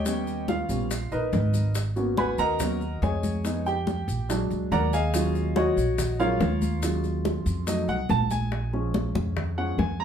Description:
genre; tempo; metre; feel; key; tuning
Afro-Cuban jazz; 142 BPM; 4/4; straight; Eb minor; A4 = 440 Hz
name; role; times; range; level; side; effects
warm baby grand piano; accompaniment; 0.0-10.0 s; F3 to Cb6; -27 LUFS; right 1 dB; none
upright bass; bass; 0.0-10.0 s; Ab1 to F2; -28 LUFS; right 1 dB; none
bongos; percussion; 0.1-10.0 s; none; -33 LUFS; left 2 dB; none
congas; percussion; 0.1-10.0 s; none; -31 LUFS; left 2 dB; none
maracas; percussion; 0.1-8.5 s; none; -40 LUFS; left 4 dB; none
room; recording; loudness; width
wet studio reverb, RT60 0.6 s; heard from further back in the room; -23 LUFS; side -8 dB against mid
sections
0.0-8.5 A section; 8.5-10.0 A section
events
grand piano solo 0.0-10.0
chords
0.1 Eb7b13; 1.8 Abm11; 3.4 Fm7b5; 4.3 Bb7alt; 5.1 Ebm11; 7.7 F7b9; 8.5 Bbm7

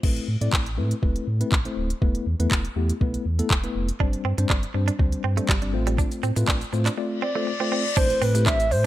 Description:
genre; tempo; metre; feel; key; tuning
dance-pop; 121 BPM; 4/4; straight; A minor; A4 = 438 Hz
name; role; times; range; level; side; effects
mellow tine electric piano; accompaniment; 0.0-8.9 s; G3 to D5; -29 LUFS; left 2 dB; medium stereo tremolo, sidechain pumping
sub bass with octave; bass; 0.0-8.9 s; D1 to A2; -25 LUFS; equal; sidechain pumping
smooth R&B drum kit; drums; 0.0-8.8 s; crash cymbal, handclaps, hi-hat, kick drum, shaker; -24 LUFS; equal; none
direct-recorded clean electric guitar; riff; 4.0-8.7 s; G3 to D4; -31 LUFS; right 8 dB; wide subtle chorus
reverse cymbal and impact; sound effects; 7.2-8.9 s; none; -32 LUFS; left 4 dB; none
hollow clarinet-like synth lead; melody; 7.2-8.9 s; B4 to E5; -24 LUFS; right 1 dB; chorus, ping-pong delay
room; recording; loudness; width
little or no reverb; none; -21 LUFS; side -14 dB against mid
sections
0.0-8.0 A section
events
reverse cymbal 7.2-8.0; impact 8.0-8.9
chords
0.0 Amadd9; 2.0 Esus4; 4.0 Gsus4; 5.7 F/A; 8.0 Amadd9

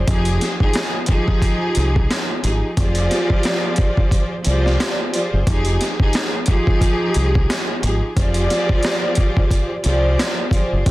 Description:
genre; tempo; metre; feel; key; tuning
hip hop, boom-bap hip-hop; 89 BPM; 4/4; swing 57% on 16ths; F dorian; A4 = 441 Hz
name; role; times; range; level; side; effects
warm studio string section; accompaniment; 0.0-10.9 s; F3 to D5; -21 LUFS; equal; high-pass filter, low-pass filter
deep dub fingered electric bass; bass; 0.0-10.9 s; F1 to C2; -18 LUFS; equal; none
boom bap sampler-style drum kit; drums; 0.1-10.9 s; hi-hat, kick drum, rim click, snare drum; -19 LUFS; equal; none
room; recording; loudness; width
light reverb; dense, heavily limited modern master, vinyl crackle; -16 LUFS; side -18 dB against mid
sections
0.0-10.9 A section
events
none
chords
0.1 Fm9; 2.8 Fm69; 5.5 Fm9; 8.2 Fm69

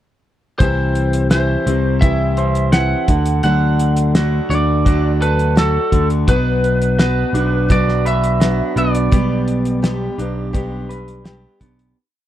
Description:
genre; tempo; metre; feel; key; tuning
folk rock and heartland rock; 84 BPM; 4/4; straight; unclear; A4 = 443 Hz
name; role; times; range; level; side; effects
lightly driven lead guitar; melody; 0.6-11.2 s; A4 to F#5; -21 LUFS; right 2 dB; none
picked steel-string acoustic guitar; accompaniment; 0.6-12.0 s; B2 to G4; -23 LUFS; left 5 dB; none
electric guitar through a small old amp; riff; 0.6-12.0 s; B2 to C5; -23 LUFS; right 3 dB; none
picked electric bass; bass; 0.6-11.9 s; B1 to D2; -18 LUFS; equal; none
cloth-damped thuddy drum kit; drums; 0.6-12.0 s; hi-hat, kick drum, snare drum; -16 LUFS; equal; none
room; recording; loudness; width
little or no reverb; dry, close 1970s-style studio recording; -14 LUFS; side -12 dB against mid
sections
0.6-12.0 verse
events
fade-out 9.1-12.0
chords
0.6 C; 3.1 D; 6.3 Bm; 9.1 G/B

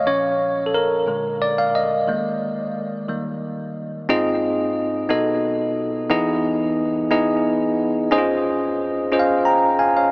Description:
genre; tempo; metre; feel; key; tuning
gospel; 60 BPM (dotted quarters); 6/8; straight; unclear; A4 = 440 Hz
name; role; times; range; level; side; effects
bell-like tine electric piano; solo; 0.0-10.1 s; B1 to Bb5; -18 LUFS; equal; medium stereo tremolo, tape echo
room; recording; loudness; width
wet huge ambient reverb, RT60 6.8 s; dreamy mix soaked in reverb, small speaker sound; -18 LUFS; side -30 dB against mid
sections
0.0-4.1 A section; 4.1-10.1 B section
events
tine electric piano solo 0.0-4.1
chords
0.1 Bbm; 1.1 Bb7; 2.1 Ebsus4; 3.1 Eb; 4.1 Ab6; 5.1 B7; 6.1 Emaj7; 8.1 Dbmaj9/F

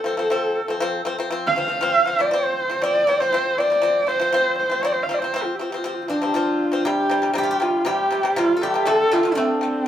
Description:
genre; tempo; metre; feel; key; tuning
mongolian traditional, Mongolian folk; 119 BPM; 4/4; straight; F gong mode; A4 = 440 Hz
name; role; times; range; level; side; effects
warm horsehead fiddle; melody; 0.0-9.9 s; C4 to F5; -20 LUFS; right 1 dB; none
pipa; arpeggios; 0.0-9.8 s; C3 to C4; -25 LUFS; left 2 dB; none
steel-string zither; second line; 6.1-9.9 s; C4 to A4; -22 LUFS; equal; none
room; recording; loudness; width
wet studio ambience, RT60 0.5 s; band playing live in one room; -18 LUFS; side -10 dB against mid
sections
0.0-6.8 A section; 6.8-9.9 B section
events
none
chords
0.0 F5; 6.8 C5; 8.9 D5

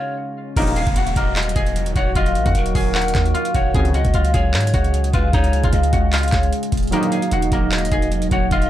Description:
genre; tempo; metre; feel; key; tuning
hip hop, trap; 151 BPM; 4/4; half-time; Eb minor; A4 = 441 Hz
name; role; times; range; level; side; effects
guzheng; melody; 0.0-8.7 s; Bb3 to Ab5; -24 LUFS; left 2 dB; low-pass filter
breathy mellow pan flute; second line; 0.0-8.7 s; Bb4 to F5; -28 LUFS; left 1 dB; analog delay
warbly lo-fi synth keys; accompaniment; 0.0-0.6, 6.9-8.7 s; Db3 to Eb4; -23 LUFS; right 5 dB; chorus, low-pass filter
deep dark ambient pad; sustained chords; 1.3-8.7 s; Db3 to Ab4; -27 LUFS; equal; chorus, built-in reverb
clear brass ensemble; stabs; 0.6-0.9, 3.7-4.0, 6.9-7.2 s; Ab1 to Eb3; -26 LUFS; left 2 dB; analog delay
warm 808-style bass; bass; 0.6-8.7 s; Eb1 to Ab2; -20 LUFS; equal; none
booming analog drum machine; drums; 0.6-8.7 s; crash cymbal, handclaps, hi-hat, kick drum; -21 LUFS; equal; overdrive
downlifter; sound effects; 0.6-3.7 s; none; -33 LUFS; left 1 dB; none
room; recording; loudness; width
little or no reverb; dry, gritty hardware recording; -16 LUFS; side -12 dB against mid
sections
0.6-8.7 A section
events
break 0.0-0.6; kick muted 6.9-7.3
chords
0.0 Db; 0.6 Ebm; 3.7 Db; 6.9 Ebm

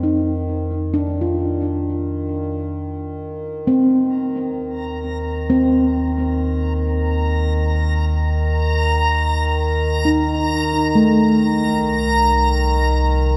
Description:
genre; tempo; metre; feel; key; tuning
ambient; 66 BPM; 4/4; straight; unclear; A4 = 437 Hz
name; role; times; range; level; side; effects
handpan; arpeggios; 0.0-13.4 s; A3 to F4; -22 LUFS; equal; diffuse ambient delay
deep rumbling drone; bass; 0.0-13.4 s; C2 to F2; -24 LUFS; equal; built-in reverb
hand-pumped harmonium; drone; 0.0-13.4 s; Eb3; -28 LUFS; equal; none
backwards swelling texture; texture; 4.8-13.4 s; Bb5; -25 LUFS; equal; built-in reverb
room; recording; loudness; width
wet lush hall reverb, RT60 2.9 s; dark, warm production; -19 LUFS; mono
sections
0.0-13.4 A section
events
fade-in on synth drone 0.0-13.4; fade-in on harmonium 0.0-13.4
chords
0.0 F5; 3.7 Eb5; 11.0 Cm

